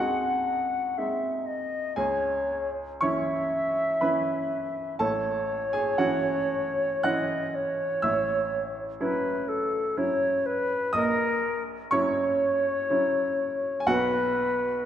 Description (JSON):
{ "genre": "classical, romantic duo for flute and grand piano", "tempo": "61 BPM", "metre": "3/4", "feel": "rubato", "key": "unclear", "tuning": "A4 = 439 Hz", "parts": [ { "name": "silver concert flute", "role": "melody", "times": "0.0-14.9 s", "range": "A4 to F#5", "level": "-26 LUFS", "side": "left 1 dB", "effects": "none" }, { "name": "bright baby grand piano", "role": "accompaniment", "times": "0.0-14.9 s", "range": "A1 to F#6", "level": "-29 LUFS", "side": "right 2 dB", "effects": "none" } ], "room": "wet concert hall reverb, RT60 1.9 s", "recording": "none", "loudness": "-24 LUFS", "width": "side -10 dB against mid", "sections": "0.0-14.9 A section", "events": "none", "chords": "0.0 G#7b9/C#; 2.0 C#m; 5.0 A; 8.0 F#m7/A; 10.9 F#7/A#; 13.9 B5" }